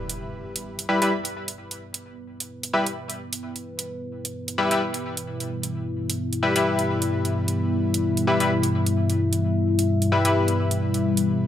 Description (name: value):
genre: bass house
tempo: 130 BPM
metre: 4/4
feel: swing 57% on 16ths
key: E minor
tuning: A4 = 440 Hz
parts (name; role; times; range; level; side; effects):
- dark analog pad; sustained chords; 0.0-11.5 s; G3 to E5; -24 LUFS; left 1 dB; chorus, phaser
- band-passed chord stab; stabs; 0.0-11.5 s; G3 to B4; -24 LUFS; left 2 dB; chorus, tape echo
- electronic hi-hat; drums; 0.1-11.3 s; none; -29 LUFS; right 3 dB; overdrive
room: moderate digital room reverb, RT60 1.2 s, digital ambience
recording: none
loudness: -22 LUFS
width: side -11 dB against mid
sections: 0.0-11.5 A section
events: filter sweep on analog synth pad 0.0-11.5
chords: 0.0 Em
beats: | 0.20 0.66 1.12 1.58 | 2.04 2.50 2.96 3.43 | 3.89 4.35 4.81 5.27 | 5.73 6.20 6.66 7.12 | 7.58 8.04 8.50 8.96 | 9.43 9.89 10.35 10.81 | 11.27